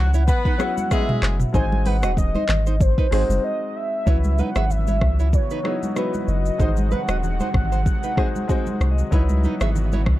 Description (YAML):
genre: afrobeats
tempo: 95 BPM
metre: 4/4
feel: swing 55% on 16ths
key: C# minor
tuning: A4 = 441 Hz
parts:
  - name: warm velvety synth lead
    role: melody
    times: 0.0-8.8 s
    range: B4 to G#5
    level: -27 LUFS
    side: equal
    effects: chorus, plate reverb
  - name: warm horn section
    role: second line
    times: 0.0-1.4 s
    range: F#3 to B4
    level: -28 LUFS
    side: left 3 dB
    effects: plate reverb
  - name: warm grand piano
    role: accompaniment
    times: 0.0-10.2 s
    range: F#3 to G#5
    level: -29 LUFS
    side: left 4 dB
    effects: plate reverb
  - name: punchy sub bass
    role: bass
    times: 0.0-10.2 s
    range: D#1 to C#2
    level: -20 LUFS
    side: equal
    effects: none
  - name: nylon-string guitar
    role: riff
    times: 0.1-10.0 s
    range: B3 to E5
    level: -31 LUFS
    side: right 8 dB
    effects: digital delay
  - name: afro-pop drum kit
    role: drums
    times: 0.1-10.2 s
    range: handclaps, hi-hat, kick drum, rim click, shaker, toms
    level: -22 LUFS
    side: equal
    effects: vintage 12-bit sampler grit
  - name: congas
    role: percussion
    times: 0.8-10.2 s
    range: none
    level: -30 LUFS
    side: right 2 dB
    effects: none
  - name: lush unison pad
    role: sustained chords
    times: 4.1-10.2 s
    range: B#2 to F#4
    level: -32 LUFS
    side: right 1 dB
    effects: chorus, plate reverb
room: little or no reverb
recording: dark, warm production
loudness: -18 LUFS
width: side -15 dB against mid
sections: 0.0-4.1 A section; 4.1-10.2 B section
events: break 3.4-4.1; grand piano fill 8.2-9.1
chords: 0.0 C#m11; 1.5 G#7; 4.1 C#m11; 6.6 G#7; 9.1 C#m11